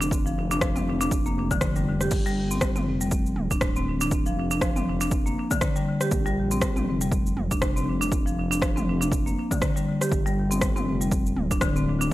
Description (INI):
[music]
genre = afro house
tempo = 120 BPM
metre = 4/4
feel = swing 58% on 16ths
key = G minor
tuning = A4 = 439 Hz
[part]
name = marimba with medium hard mallets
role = arpeggios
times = 0.0-12.1 s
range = D3 to G4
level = -26 LUFS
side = left 1 dB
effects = sidechain pumping, tape echo
[part]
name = dark detuned saw bass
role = bass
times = 0.0-12.1 s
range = D1 to Bb1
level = -29 LUFS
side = equal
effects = sidechain pumping
[part]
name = deep house drum kit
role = drums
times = 0.0-12.1 s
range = crash cymbal, rim click, shaker, toms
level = -30 LUFS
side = equal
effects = overdrive
[part]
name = electronic kick drum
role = drums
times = 0.1-11.7 s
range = none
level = -27 LUFS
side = equal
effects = overdrive
[sound]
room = little or no reverb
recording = dry, gritty hardware recording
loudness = -22 LUFS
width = side -16 dB against mid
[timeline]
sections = 0.0-12.1 A section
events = none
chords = 0.0 Bb (rootless); 2.1 G7(no3); 6.1 Bb5; 10.1 G7(no3)